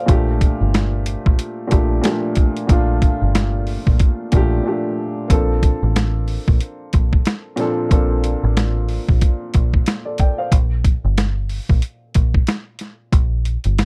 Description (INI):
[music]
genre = hip hop, boom-bap hip-hop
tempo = 92 BPM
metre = 4/4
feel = swing 61% on 16ths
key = unclear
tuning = A4 = 440 Hz
[part]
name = dark upright piano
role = accompaniment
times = 0.0-10.5 s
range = Bb2 to G5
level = -25 LUFS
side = equal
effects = cassette tape, high-pass filter, low-pass filter
[part]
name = deep dub picked electric bass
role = bass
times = 0.1-13.8 s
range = G1 to Bb1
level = -21 LUFS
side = equal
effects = none
[part]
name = boom bap sampler-style drum kit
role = drums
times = 0.1-13.8 s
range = hi-hat, kick drum, snare drum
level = -18 LUFS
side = equal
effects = none
[sound]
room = little or no reverb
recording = dark, warm production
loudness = -18 LUFS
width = mono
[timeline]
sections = 0.0-5.3 A section; 5.3-13.8 B section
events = break 4.6-5.3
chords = 0.1 Gm9; 5.3 Bbmaj9; 10.5 Gm